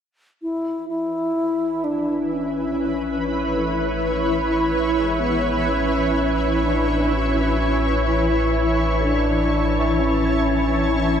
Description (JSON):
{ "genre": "ambient", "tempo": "63 BPM", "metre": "4/4", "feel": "straight", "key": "A major", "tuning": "A4 = 440 Hz", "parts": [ { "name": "mellow hollow alto flute", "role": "melody", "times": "0.4-11.2 s", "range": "B3 to E4", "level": "-23 LUFS", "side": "equal", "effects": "tape echo" }, { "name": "shimmering ambient pad", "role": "sustained chords", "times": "1.8-11.2 s", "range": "E3 to A5", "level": "-21 LUFS", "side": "equal", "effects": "chorus, built-in reverb" }, { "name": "round analog bass", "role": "bass", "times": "0.4-11.2 s", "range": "A1", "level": "-26 LUFS", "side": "equal", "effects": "none" }, { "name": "felt-muted upright piano", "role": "arpeggios", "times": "3.6-11.2 s", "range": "G#3 to A4", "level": "-39 LUFS", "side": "equal", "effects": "none" } ], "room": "wet huge ambient reverb, RT60 7.4 s", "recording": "none", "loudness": "-18 LUFS", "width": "side -8 dB against mid", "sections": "0.4-11.2 A section", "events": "none", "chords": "0.4 Amaj7" }